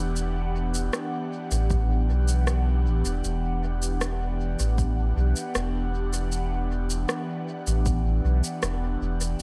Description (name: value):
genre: ambient dub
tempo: 78 BPM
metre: 4/4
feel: straight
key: E minor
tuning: A4 = 442 Hz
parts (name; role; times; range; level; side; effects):
- airy breathy pad; sustained chords; 0.0-9.4 s; E3 to F#5; -33 LUFS; equal; chorus, phaser
- soft dub sub bass; bass; 0.0-9.4 s; E1 to B1; -27 LUFS; equal; tube saturation
- electronic shaker and rim click; drums; 0.2-9.4 s; none; -34 LUFS; equal; overdrive, dub echo
- electronic kick drum; drums; 1.7-8.0 s; none; -32 LUFS; equal; none
room: light reverb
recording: none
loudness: -26 LUFS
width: mono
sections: 0.0-9.4 A section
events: none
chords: 0.0 Em7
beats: | 0.17 0.94 1.71 2.48 | 3.24 4.01 4.78 5.55 | 6.32 7.09 7.86 8.63 | 9.40